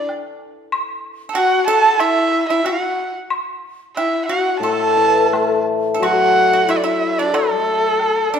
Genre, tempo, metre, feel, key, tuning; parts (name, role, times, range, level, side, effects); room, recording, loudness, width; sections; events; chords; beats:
chinese traditional, Chinese chamber ensemble; 83-95 BPM; 4/4; rubato; A4 = 440 Hz
warm erhu; melody; 0.0-8.4 s; A4 to A5; -17 LUFS; right 3 dB
bright xiao; second line; 0.0-8.4 s; E4 to D5; -20 LUFS; left 7 dB
pipa; second line; 0.0-8.4 s; A3 to A4; -24 LUFS; right 6 dB
hammered dulcimer; accompaniment; 0.0-0.1, 4.6-8.0 s; A2 to A3; -22 LUFS; left 4 dB
woodblock; percussion; 0.1-8.1 s; -27 LUFS; left 2 dB
wet recital hall reverb, RT60 1.5 s; -15 LUFS; side -7 dB against mid
0.0-6.0 A section; 6.0-8.4 B section
0.08 | 0.72 1.35 1.99 2.64 | 3.29 3.95 4.62 5.31 | 6.00 6.67 7.33 7.99